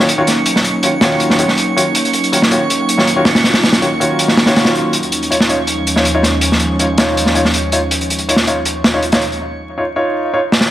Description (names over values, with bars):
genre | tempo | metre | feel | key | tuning
drum and bass, jungle | 161 BPM | 4/4 | straight | Eb minor | A4 = 440 Hz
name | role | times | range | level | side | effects
airy breathy pad | sustained chords | 0.0-9.4 s | Eb2 to Eb4 | -19 LUFS | right 1 dB | chorus
warm grand piano | stabs | 0.0-10.4 s | Eb3 to Db5 | -17 LUFS | left 1 dB | vintage 12-bit sampler grit, low-pass filter, dub echo
drifting glass-harmonics texture | texture | 0.0-9.4 s | Db6 | -23 LUFS | right 4 dB | chorus, built-in reverb
crunchy breakbeat drum kit | drums | 0.1-10.7 s | hi-hat, snare drum | -14 LUFS | equal | none
room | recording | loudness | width
moderate digital room reverb, RT60 1.2 s, small room ambience | vinyl crackle | -11 LUFS | side -13 dB against mid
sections
0.0-10.7 A section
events
drum fill 10.5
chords
0.0 Ebm7; 4.9 Dbadd9/Eb